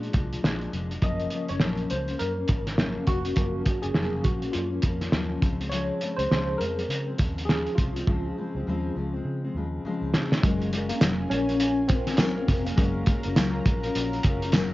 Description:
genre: indie pop, bedroom pop.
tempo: 102 BPM.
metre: 4/4.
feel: swing 60% on 16ths.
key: Gb lydian.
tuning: A4 = 440 Hz.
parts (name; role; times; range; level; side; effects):
tine electric piano; melody; 0.0-13.5 s; Ab3 to Eb5; -31 LUFS; left 1 dB; overdrive, fast stereo tremolo, lush chorus, cassette tape, tape echo.
fingerpicked steel-string acoustic guitar; accompaniment; 0.0-14.7 s; Gb2 to Bb4; -30 LUFS; left 2 dB; wide subtle chorus, vibrato effect.
vintage muted fingered electric bass; bass; 0.0-14.7 s; F1 to Db3; -32 LUFS; equal; none.
cloth-damped thuddy drum kit; drums; 0.0-14.7 s; hi-hat, kick drum, snare drum; -25 LUFS; equal; cassette tape.
warm analog pad; sustained chords; 10.4-14.7 s; Gb3 to Bb5; -37 LUFS; right 1 dB; chorus.
tambourine; percussion; 11.0-14.7 s; none; -43 LUFS; right 4 dB; none.
room: light reverb.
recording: home recording on cassette, nothing above 7.5 kHz.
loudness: -23 LUFS.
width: side -17 dB against mid.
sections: 0.0-10.4 A section; 10.4-14.7 B section.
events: drum fill 8.1-10.4.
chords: 0.0 Bb7; 1.0 Gbmaj7; 5.4 Dbmaj7; 10.4 Gbmaj9.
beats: 0.43 | 1.02 1.61 2.20 2.79 | 3.38 3.96 4.55 5.14 | 5.73 6.32 6.91 7.49 | 8.08 8.67 9.26 9.84 | 10.43 11.02 11.61 12.19 | 12.78 13.37 13.95 14.54.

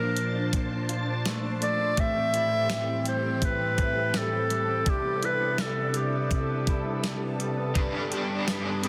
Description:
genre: dream pop.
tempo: 83 BPM.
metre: 4/4.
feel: straight.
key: C major.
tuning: A4 = 442 Hz.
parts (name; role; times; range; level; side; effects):
mellow clarinet; melody; 0.0-8.9 s; G4 to E5; -31 LUFS; equal; digital delay.
ensemble organ-string; sustained chords; 0.0-8.9 s; G2 to A5; -34 LUFS; equal; ensemble chorus.
mellow electric guitar; arpeggios; 0.0-8.9 s; G2 to G4; -35 LUFS; equal; lush chorus, digital delay.
crisp 8-bit digital drum machine; drums; 0.2-8.9 s; hi-hat, kick drum, snare drum, tambourine; -32 LUFS; equal; none.
raw garage guitar; accompaniment; 7.7-8.9 s; G2 to G4; -33 LUFS; equal; overdrive, tremolo, ensemble chorus.
room: moderate huge ambient reverb, RT60 6.4 s.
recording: dense, heavily limited modern master.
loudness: -27 LUFS.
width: mono.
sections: 0.0-8.9 A section.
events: none.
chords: 0.0 Bbmaj7; 2.0 Am7; 4.9 Cmaj7; 7.8 G.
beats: 0.53 1.25 | 1.97 2.70 3.42 4.14 | 4.87 5.59 6.31 7.03 | 7.76 8.48.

